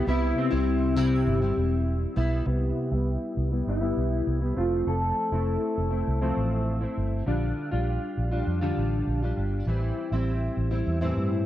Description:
indie pop, bedroom pop; 100 BPM; 4/4; straight; C major; A4 = 440 Hz
electric guitar through a small old amp; melody; 0.0-6.9 s; C4 to A4; -29 LUFS; left 2 dB; lush chorus, low-pass filter, slapback echo
fingerpicked plugged-in steel-string acoustic guitar; accompaniment; 0.0-11.5 s; A2 to F4; -28 LUFS; equal; ensemble chorus, warbly pitch drift, low-pass filter
vintage muted fingered electric bass; bass; 0.1-11.5 s; E1 to G2; -27 LUFS; equal
moderate spring reverb, RT60 1.7 s, small room ambience; dark, warm production; -24 LUFS; side -13 dB against mid
0.0-2.5 A section; 2.5-11.5 B section
filter sweep 2.5-11.5
0.0 Cmaj7; 4.6 Fmaj7; 7.3 Bb6; 9.7 Am7

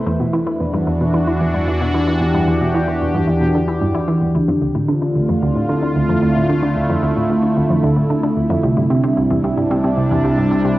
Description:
ambient, sequencer-driven space music; 112 BPM; 4/4; straight; D minor from 4.4 s; A4 = 440 Hz
sweeping resonant pad; sustained chords; 0.0-10.8 s; C3 to B4; -16 LUFS; equal; chorus, cassette tape
fat analog bass; bass; 0.0-10.8 s; C2 to E2; -28 LUFS; equal
analog pluck; riff; 0.1-10.7 s; C2 to E3; -20 LUFS; equal; chorus, cassette tape, tape echo
pulsing gated texture; texture; 4.7-10.8 s; C4; -28 LUFS; right 3 dB
wet spring reverb, RT60 1.0 s; home recording on cassette; -14 LUFS; side -16 dB against mid
0.0-4.4 A section; 4.4-10.8 B section
0.1 Em7; 4.4 Dm7; 8.6 C

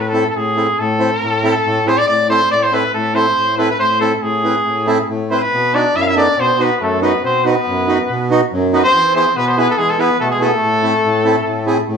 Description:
klezmer; 140 BPM; 4/4; straight; A harmonic minor; A4 = 438 Hz
bright cornet; melody; 0.0-11.9 s; G#4 to F5; -16 LUFS; equal
accordion; accompaniment; 0.0-12.0 s; F#2 to C5; -17 LUFS; right 1 dB
brilliant trombone; second line; 5.7-11.9 s; G#3 to E4; -20 LUFS; left 3 dB
moderate large studio reverb, RT60 0.9 s; band playing live in one room; -13 LUFS; side -6 dB against mid
0.0-12.0 A section
speeding up 0.0-12.0
0.0 Am; 5.5 B; 8.9 E; 10.6 Am

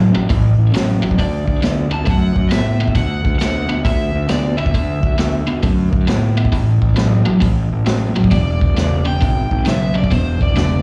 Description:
blues rock power trio and southern rock; 134 BPM; 4/4; swing 65% on 8ths; A4 = 440 Hz
overdriven electric guitar; riff; 0.0-10.8 s; E2 to B3; -22 LUFS; equal; spring reverb
fuzz fingered electric bass; bass; 0.0-10.8 s; E1 to A2; -20 LUFS; equal; overdrive
vintage drum kit; drums; 0.3-10.7 s; hi-hat, kick drum, snare drum; -21 LUFS; equal
overdriven slide guitar; melody; 1.2-5.4, 8.3-10.8 s; C5 to A5; -27 LUFS; equal; slapback echo
little or no reverb; live gig heard through the venue's PA, club reverb, small room reverb; -16 LUFS; mono
0.0-10.8 A section
0.0 A5; 1.2 D; 6.5 A5; 8.3 E7

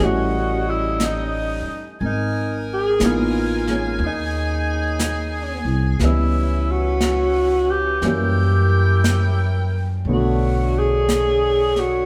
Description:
jazz ballad; 60 BPM; 4/4; swing 66% on 8ths; A4 = 440 Hz
mellow alto saxophone; melody; 0.0-12.1 s; D#4 to G#4; -24 LUFS; equal
warm baby grand piano; accompaniment; 0.0-12.1 s; D3 to D#5; -28 LUFS; equal
edgy saxophone section; sustained chords; 0.0-12.1 s; G3 to G#5; -30 LUFS; equal
upright bass; bass; 0.0-12.0 s; G#1 to F#2; -24 LUFS; equal
jazz brush drum kit; drums; 1.0-12.1 s; brushed snare drum, hi-hat, snare drum; -30 LUFS; equal
wet stone room reverb, RT60 1.3 s; band playing live in one room; -20 LUFS; mono
0.0-12.1 A section
0.0 A7#11; 2.0 G#m9; 6.0 C#m7b5; 8.0 F#7b9; 10.1 Bm9

